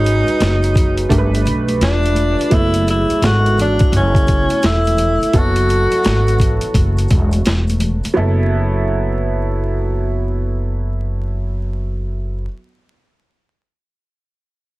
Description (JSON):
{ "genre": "hip hop, jazz-hop", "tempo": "85 BPM", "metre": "4/4", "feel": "swing 65% on 16ths", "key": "F# minor", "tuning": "A4 = 440 Hz", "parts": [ { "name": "mellow tenor saxophone", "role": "melody", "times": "0.0-6.8 s", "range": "C#4 to F#4", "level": "-18 LUFS", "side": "equal", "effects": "analog delay" }, { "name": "vibraphone with soft mallets", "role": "second line", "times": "0.0-6.8 s", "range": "E4 to A4", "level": "-24 LUFS", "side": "equal", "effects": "none" }, { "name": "warm upright piano", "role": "accompaniment", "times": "0.0-12.5 s", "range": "F#3 to B4", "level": "-23 LUFS", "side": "right 2 dB", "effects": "none" }, { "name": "upright bass", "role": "bass", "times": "0.0-12.4 s", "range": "E1 to B1", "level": "-17 LUFS", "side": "equal", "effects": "none" }, { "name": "maracas and congas", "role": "percussion", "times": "0.0-8.5 s", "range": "none", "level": "-29 LUFS", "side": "left 2 dB", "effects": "none" }, { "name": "boom bap sampler-style drum kit", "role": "drums", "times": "0.1-8.2 s", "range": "hi-hat, kick drum, snare drum", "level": "-17 LUFS", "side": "equal", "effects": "none" } ], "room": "light reverb", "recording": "heavily compressed radio sound, multiband compression, vinyl crackle", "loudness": "-14 LUFS", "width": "side -19 dB against mid", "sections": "0.0-8.2 A section; 8.2-11.0 B section", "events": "none", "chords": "0.0 G#m7; 1.1 G7; 2.5 F#m7" }